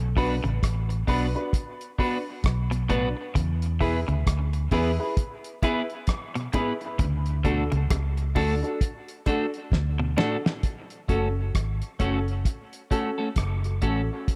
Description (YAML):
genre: dub reggae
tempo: 66 BPM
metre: 4/4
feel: swing 60% on 16ths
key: F# minor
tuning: A4 = 440 Hz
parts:
  - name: vintage muted fingered electric bass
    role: bass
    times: 0.0-14.1 s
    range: F#1 to E2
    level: -28 LUFS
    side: equal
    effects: none
  - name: clean electric guitar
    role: accompaniment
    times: 0.2-14.0 s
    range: A3 to B4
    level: -33 LUFS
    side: equal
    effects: vibrato effect, dub echo
  - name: clean electric guitar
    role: arpeggios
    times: 0.2-10.3 s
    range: G#2 to C#3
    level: -37 LUFS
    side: equal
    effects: dub echo
  - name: dark upright piano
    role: stabs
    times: 0.2-14.0 s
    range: C#4 to B4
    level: -35 LUFS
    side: equal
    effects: dub echo
  - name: cloth-damped thuddy drum kit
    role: drums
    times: 0.2-14.4 s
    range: hi-hat, kick drum, rim click, snare drum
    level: -29 LUFS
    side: equal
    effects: none
  - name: bongos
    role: percussion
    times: 4.7-10.4 s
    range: none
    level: -38 LUFS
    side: equal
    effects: none
room: light reverb, studio reverb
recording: none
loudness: -26 LUFS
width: mono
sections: 0.0-10.6 A section; 10.6-14.4 B section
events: break 0.0-3.4; drum fill 9.7-10.6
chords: 0.0 Bm; 3.4 E; 7.0 D; 10.6 F#m